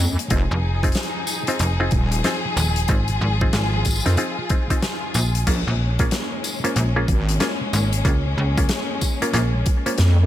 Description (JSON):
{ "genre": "glitch hop", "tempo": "93 BPM", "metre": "4/4", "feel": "swing 63% on 16ths", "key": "Bb minor", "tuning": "A4 = 443 Hz", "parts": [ { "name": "clear studio string section", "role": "sustained chords", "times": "0.0-10.3 s", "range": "F3 to Ab4", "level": "-27 LUFS", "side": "left 3 dB", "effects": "sidechain pumping" }, { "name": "muted clav", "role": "stabs", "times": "0.0-10.3 s", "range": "Bb3 to C5", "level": "-27 LUFS", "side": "equal", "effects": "overdrive, vintage 12-bit sampler grit, sidechain pumping, tape echo" }, { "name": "wobble bass", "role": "bass", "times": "0.0-10.3 s", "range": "Eb1 to F2", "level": "-18 LUFS", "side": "equal", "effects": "chorus, tube saturation" }, { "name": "huge arena drum kit", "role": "drums", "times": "0.2-10.1 s", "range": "crash cymbal, hi-hat, rim click, snare drum, tambourine", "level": "-27 LUFS", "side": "left 2 dB", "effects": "none" }, { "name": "electronic kick drum", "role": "drums", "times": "0.3-9.8 s", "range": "none", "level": "-21 LUFS", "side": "equal", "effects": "overdrive" }, { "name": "slap-like FM bass", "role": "bass", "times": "0.5-9.6 s", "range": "Eb1 to Db2", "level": "-20 LUFS", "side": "equal", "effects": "none" } ], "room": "small room ambience", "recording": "none", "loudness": "-18 LUFS", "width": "side -12 dB against mid", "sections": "0.0-10.3 A section", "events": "none", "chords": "0.3 Fm7; 5.5 Bbm7", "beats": "| 0.31 0.95 1.60 2.24 | 2.89 3.53 4.18 4.82 | 5.47 6.11 6.76 7.40 | 8.05 8.69 9.34 9.98" }